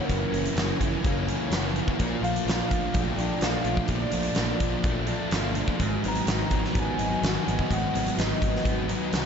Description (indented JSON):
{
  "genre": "rock, shoegaze and dream pop",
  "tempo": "126 BPM",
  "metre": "4/4",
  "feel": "straight",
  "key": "unclear",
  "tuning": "A4 = 442 Hz",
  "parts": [
    { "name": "pure sine lead", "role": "melody", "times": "0.0-8.7 s", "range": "A#4 to A#5", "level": "-33 LUFS", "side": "right 1 dB", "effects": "chorus, phaser, analog delay" },
    { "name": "string machine, violins", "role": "sustained chords", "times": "0.0-9.3 s", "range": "E4 to A#5", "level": "-37 LUFS", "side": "equal", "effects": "ensemble chorus" },
    { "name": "electric guitar through a small old amp", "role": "arpeggios", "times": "0.0-9.3 s", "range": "D#3 to F#4", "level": "-37 LUFS", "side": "equal", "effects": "lush chorus, analog delay" },
    { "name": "biting overdriven guitar", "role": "riff", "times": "0.0-9.3 s", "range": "F#2 to D#4", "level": "-32 LUFS", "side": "right 10 dB", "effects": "reverse reverb" },
    { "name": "thick fuzz guitar", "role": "riff", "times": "0.0-9.3 s", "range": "F#2 to D#4", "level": "-30 LUFS", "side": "left 10 dB", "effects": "distortion, wide subtle chorus" },
    { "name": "picked electric bass", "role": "bass", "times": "0.1-9.3 s", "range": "F#1 to B#1", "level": "-32 LUFS", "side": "equal", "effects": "none" },
    { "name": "huge arena drum kit", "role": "drums", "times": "0.1-9.2 s", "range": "hi-hat, kick drum, snare drum", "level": "-28 LUFS", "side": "equal", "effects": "none" }
  ],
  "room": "light reverb, small room ambience",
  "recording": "nothing above 7.8 kHz",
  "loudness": "-24 LUFS",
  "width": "side -7 dB against mid",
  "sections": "0.0-9.3 A section",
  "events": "none",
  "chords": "0.0 F#7; 2.0 A#maj7; 5.8 G#m7",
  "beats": "| 0.10 0.57 1.05 1.53 | 2.00 2.48 2.95 3.43 | 3.90 4.38 4.85 5.33 | 5.80 6.27 6.75 7.22 | 7.70 8.17 8.64 9.12"
}